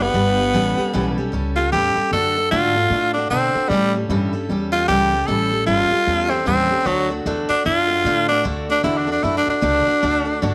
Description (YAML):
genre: rockabilly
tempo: 152 BPM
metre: 4/4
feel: swing 59% on 8ths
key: D major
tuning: A4 = 441 Hz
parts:
  - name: raspy tenor saxophone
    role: melody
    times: 0.0-10.5 s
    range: F#3 to A4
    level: -20 LUFS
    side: equal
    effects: none
  - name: picked steel-string acoustic guitar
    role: accompaniment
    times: 0.0-10.5 s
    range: A2 to B4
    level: -25 LUFS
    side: equal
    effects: none
  - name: upright bass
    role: bass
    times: 0.0-10.5 s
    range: F#1 to B2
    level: -28 LUFS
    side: equal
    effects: none
room: moderate spring reverb, RT60 1.6 s, studio reverb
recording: none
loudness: -19 LUFS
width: mono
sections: 0.0-8.4 A section; 8.4-10.5 A section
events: none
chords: 0.0 G; 0.5 A7; 2.1 D; 3.7 A7; 6.9 D